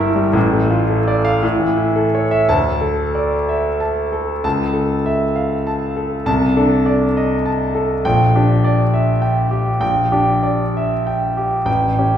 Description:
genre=classical, romantic character piece for solo piano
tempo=54-69 BPM (dotted quarters)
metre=6/8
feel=rubato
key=D minor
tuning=A4 = 437 Hz
part: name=clear concert grand piano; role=solo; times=0.0-12.2 s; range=G1 to E6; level=-14 LUFS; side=equal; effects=none
room=wet recital hall reverb, RT60 1.4 s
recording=recorded in a church or concert hall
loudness=-15 LUFS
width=side -9 dB against mid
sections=0.0-2.5 A section; 2.5-12.2 B section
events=none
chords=0.4 Dm/A; 1.4 A; 2.5 D5; 4.4 A/C#; 6.3 D5/C; 8.0 Em7b5/Bb; 11.7 A7

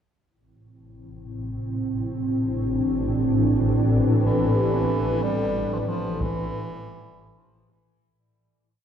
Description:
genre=dark ambient drone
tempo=61 BPM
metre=4/4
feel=straight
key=A minor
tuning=A4 = 444 Hz
part: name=dark analog pad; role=sustained chords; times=1.4-8.2 s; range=C4 to B4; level=-25 LUFS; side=right 1 dB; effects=chorus
part: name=swarming drone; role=drone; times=1.3-8.3 s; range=A1 to A2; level=-25 LUFS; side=left 1 dB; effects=built-in reverb
part: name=clear bass clarinet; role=melody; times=4.3-7.7 s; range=E3 to G3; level=-29 LUFS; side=equal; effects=none
part: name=gamelan-type bronze metallophone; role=arpeggios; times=4.5-8.8 s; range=E3 to A4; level=-33 LUFS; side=left 3 dB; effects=none
part: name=taiko ensemble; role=percussion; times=6.2-6.4 s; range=none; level=-31 LUFS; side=right 1 dB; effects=low-pass filter on perc
room=moderate plate reverb, RT60 2.8 s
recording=echo-heavy mix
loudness=-21 LUFS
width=side -8 dB against mid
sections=0.3-8.2 A section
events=fade-out 4.2-8.2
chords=0.3 Amadd9

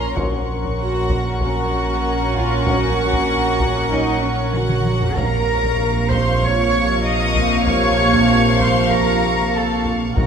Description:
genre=cinematic, suspense film score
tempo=96 BPM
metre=4/4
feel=straight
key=Bb minor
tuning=A4 = 441 Hz
part: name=warm studio violin section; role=second line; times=0.0-10.3 s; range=F5 to Db6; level=-24 LUFS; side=equal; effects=none
part: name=warm studio viola section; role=accompaniment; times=0.0-10.3 s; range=C3 to Bb4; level=-24 LUFS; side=right 2 dB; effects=none
part: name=deep dark ambient pad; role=sustained chords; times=0.0-10.3 s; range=F4 to C6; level=-28 LUFS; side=equal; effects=chorus, built-in reverb
part: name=rich studio double bass section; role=bass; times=0.0-10.3 s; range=Bb1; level=-24 LUFS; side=right 3 dB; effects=none
part: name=pure sine sub bass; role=drone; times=0.0-10.3 s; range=Bb1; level=-26 LUFS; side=left 1 dB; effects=none
part: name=mellow French horn section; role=sustained chords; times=0.2-10.3 s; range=F3 to Db4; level=-26 LUFS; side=left 1 dB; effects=none
part: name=taiko ensemble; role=drums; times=0.2-10.3 s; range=none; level=-27 LUFS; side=equal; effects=none
part: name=rich studio violin section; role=texture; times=0.2-4.8, 10.2-10.3 s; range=Bb5 to Db6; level=-31 LUFS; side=left 3 dB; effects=none
part: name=rich studio violin section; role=melody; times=0.8-10.3 s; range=Db5 to Eb6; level=-27 LUFS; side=left 4 dB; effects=none
part: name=warm studio cello section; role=bass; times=0.8-10.3 s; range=Db4 to Eb5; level=-22 LUFS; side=right 3 dB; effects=none
part: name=timpani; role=percussion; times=10.2-10.3 s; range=Bb2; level=-21 LUFS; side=left 1 dB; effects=none
room=wet scoring stage reverb, RT60 1.6 s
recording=none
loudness=-15 LUFS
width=side -7 dB against mid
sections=0.0-10.3 A section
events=drum fill 4.5-5.2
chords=0.2 Gb/Bb; 5.2 Bbmadd9

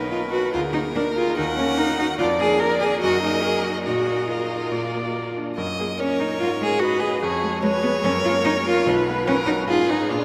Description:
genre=quick classical-period movement for piano quartet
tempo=145 BPM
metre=4/4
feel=rubato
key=Eb minor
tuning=A4 = 440 Hz
part: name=rich violin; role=melody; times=0.0-10.2 s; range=F4 to Gb5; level=-29 LUFS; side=equal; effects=none
part: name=rich cello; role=second line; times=0.0-10.2 s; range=Ab3 to Bb4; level=-24 LUFS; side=equal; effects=none
part: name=clear concert grand piano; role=accompaniment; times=0.0-10.2 s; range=B1 to D#5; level=-30 LUFS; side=equal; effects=none
part: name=rich viola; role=accompaniment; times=0.0-10.2 s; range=Ab4 to Eb5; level=-32 LUFS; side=equal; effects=none
room=wet huge ambient reverb, RT60 7.2 s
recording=in a vast, echoing space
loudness=-22 LUFS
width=mono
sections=0.0-10.2 A section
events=none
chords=0.0 Bmaj7; 0.5 Bb7/D; 1.4 Ebm; 2.2 Bb7/F; 3.0 Ebm/Gb; 3.9 Bbsus4; 4.7 Bb; 5.6 Ebm/Gb; 6.4 Abm; 7.2 Db/F; 8.0 Gb; 8.9 B5; 9.7 Fm7b5/Ab

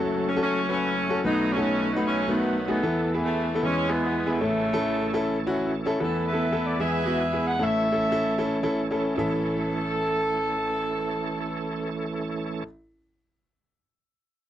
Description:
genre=uptempo gospel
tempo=151 BPM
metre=4/4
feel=swing 64% on 8ths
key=A major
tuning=A4 = 440 Hz
part: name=clear saxophone section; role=melody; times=0.0-12.6 s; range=C#3 to F#5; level=-28 LUFS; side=equal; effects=none
part: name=bright grand piano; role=accompaniment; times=0.0-12.7 s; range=F#1 to E5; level=-26 LUFS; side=left 1 dB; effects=none
part: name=bright tonewheel organ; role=sustained chords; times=0.0-12.6 s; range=E3 to A4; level=-32 LUFS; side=right 4 dB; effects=slow rotary speaker, overdrive, chorus vibrato
room=little or no reverb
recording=dry, close 1970s-style studio recording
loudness=-23 LUFS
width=side -11 dB against mid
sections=0.0-6.0 A section; 6.0-9.2 B section; 9.2-12.3 C section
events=none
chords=0.0 F#m; 1.2 B7; 2.8 Esus4; 3.6 E; 4.4 A; 6.0 Esus4; 6.8 E; 7.6 A

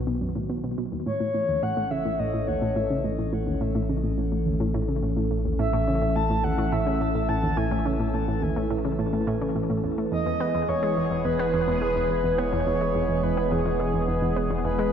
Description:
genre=ambient, sequencer-driven space music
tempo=106 BPM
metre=4/4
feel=straight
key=unclear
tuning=A4 = 440 Hz
part: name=sweeping resonant pad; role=sustained chords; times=0.0-14.9 s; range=D#3 to A4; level=-28 LUFS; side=right 2 dB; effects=chorus
part: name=analog pluck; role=riff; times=0.0-14.9 s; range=D#2 to B3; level=-28 LUFS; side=left 1 dB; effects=chorus, ping-pong delay
part: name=round analog bass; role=bass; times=0.0-14.9 s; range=E1 to B1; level=-31 LUFS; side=equal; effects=none
part: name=breathy flute-like synth lead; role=melody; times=1.1-14.9 s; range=G#4 to A5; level=-28 LUFS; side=left 1 dB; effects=wide subtle chorus, ping-pong delay
room=wet plate reverb, RT60 3.5 s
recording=echo-heavy mix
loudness=-23 LUFS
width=side -8 dB against mid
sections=0.0-14.9 A section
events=none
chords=0.0 B; 1.1 A; 10.1 E

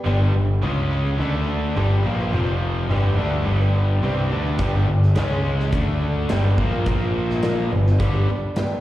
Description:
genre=classic rock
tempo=106 BPM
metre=4/4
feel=straight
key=unclear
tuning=A4 = 440 Hz
part: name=picked acoustic archtop guitar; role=accompaniment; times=0.0-8.8 s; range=G2 to F5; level=-29 LUFS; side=right 1 dB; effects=slapback echo
part: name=biting overdriven guitar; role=riff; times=0.0-8.3 s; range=F2 to D4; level=-29 LUFS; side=right 7 dB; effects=slapback echo
part: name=cranked stack guitar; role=riff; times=0.1-8.3 s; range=F2 to D4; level=-27 LUFS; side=left 6 dB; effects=overdrive, slapback echo
part: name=growling picked electric bass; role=bass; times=0.1-8.3 s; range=F1 to D2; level=-20 LUFS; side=equal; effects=overdrive
part: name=big rock drum kit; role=drums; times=4.6-8.7 s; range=hi-hat, kick drum, snare drum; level=-26 LUFS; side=equal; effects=none
room=studio reverb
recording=live gig heard through the venue's PA, recital hall reverb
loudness=-18 LUFS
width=side -14 dB against mid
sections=0.0-8.8 A section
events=none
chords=0.0 G; 0.6 C#5; 1.2 D5; 1.8 G; 2.3 F5; 2.9 G; 5.2 C#5; 5.7 D5; 6.3 G; 6.6 Bb5; 7.7 G

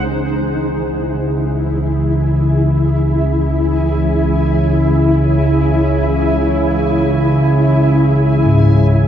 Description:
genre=dark ambient drone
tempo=free time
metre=none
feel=none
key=C# minor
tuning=A4 = 440 Hz
part: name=granular cloud pad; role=sustained chords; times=0.0-9.1 s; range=E4 to E5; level=-17 LUFS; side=equal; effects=built-in reverb
part: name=bronze singing bowl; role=arpeggios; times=0.0-9.1 s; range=G#2 to G#3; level=-21 LUFS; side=left 1 dB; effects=none
part: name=analog drone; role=drone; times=0.0-9.1 s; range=C#2 to C#3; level=-14 LUFS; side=equal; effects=chorus
part: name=bubbling stepped-filter texture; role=texture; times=0.0-9.1 s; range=G#5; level=-33 LUFS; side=left 2 dB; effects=chorus, built-in reverb
room=wet cathedral reverb, RT60 6.2 s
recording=dark, warm production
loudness=-12 LUFS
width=side -9 dB against mid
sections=0.1-9.1 A section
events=fade-in on synth texture 0.1-9.1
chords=0.1 C#m

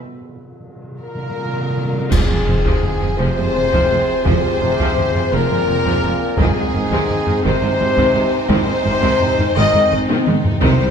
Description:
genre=cinematic, epic orchestral film score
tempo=56 BPM (dotted quarters)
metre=6/8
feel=straight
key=F minor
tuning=A4 = 439 Hz
part: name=timpani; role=percussion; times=0.0-2.1, 10.6-10.9 s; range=C3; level=-26 LUFS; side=right 1 dB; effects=none
part: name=rich studio violin section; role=melody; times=1.0-10.9 s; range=Ab4 to Eb5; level=-25 LUFS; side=left 5 dB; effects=none
part: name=clear trombone section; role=sustained chords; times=1.0-10.9 s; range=Ab2 to Eb3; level=-26 LUFS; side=right 3 dB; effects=none
part: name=mellow French horn section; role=sustained chords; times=1.0-10.9 s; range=Ab4 to Eb5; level=-22 LUFS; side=left 2 dB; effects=none
part: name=mellow trumpet section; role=stabs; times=1.0-10.9 s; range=Ab4 to Eb5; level=-26 LUFS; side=equal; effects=none
part: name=rich symphonic violin section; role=second line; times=2.1-10.9 s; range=C4 to Ab4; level=-26 LUFS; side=left 1 dB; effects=none
part: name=clear symphonic viola section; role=accompaniment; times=2.1-10.9 s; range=C3 to Ab3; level=-24 LUFS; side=equal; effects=none
part: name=mellow woodwind section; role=sustained chords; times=2.1-10.9 s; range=C4 to Ab5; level=-28 LUFS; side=left 2 dB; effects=none
part: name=clear symphonic double bass section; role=bass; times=2.1-10.7 s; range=F1 to C2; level=-23 LUFS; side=right 3 dB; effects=none
part: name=rich symphonic cello section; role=bass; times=2.1-10.9 s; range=C2 to Ab2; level=-25 LUFS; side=right 2 dB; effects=none
part: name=taiko ensemble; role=drums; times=2.1-10.9 s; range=none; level=-20 LUFS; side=equal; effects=none
part: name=clash cymbals and concert bass drum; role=percussion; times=2.1-3.5 s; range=none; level=-25 LUFS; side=equal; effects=none
room=moderate scoring stage reverb, RT60 1.8 s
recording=none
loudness=-14 LUFS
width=side -7 dB against mid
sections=0.0-2.1 A section; 2.1-10.9 B section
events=break 0.0-2.1; timpani fill 0.0-2.1; band accent 2.1-2.8; drum fill 10.1-10.6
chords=0.0 N.C.; 2.1 Fm; 6.4 Ab

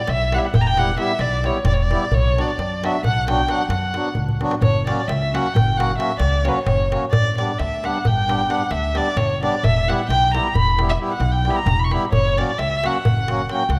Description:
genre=balkan folk, Balkan wedding band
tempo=264 BPM (eighths)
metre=11/8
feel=straight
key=F# phrygian dominant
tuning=A4 = 440 Hz
part: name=dark violin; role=melody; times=0.0-13.8 s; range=B4 to C#6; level=-24 LUFS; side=equal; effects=none
part: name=upright bass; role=bass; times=0.1-13.8 s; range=E1 to F#2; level=-25 LUFS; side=equal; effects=none
part: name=darbuka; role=percussion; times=0.1-13.8 s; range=none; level=-25 LUFS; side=equal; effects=none
part: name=accordion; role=accompaniment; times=0.3-13.6 s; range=F#3 to G4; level=-28 LUFS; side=equal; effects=none
room=moderate recital hall reverb, RT60 1.7 s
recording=none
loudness=-20 LUFS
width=mono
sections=0.0-13.8 A section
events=drum fill 4.2-4.6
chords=0.0 Em; 2.1 Bm; 4.6 F#; 7.1 G; 9.6 Em; 12.1 F#

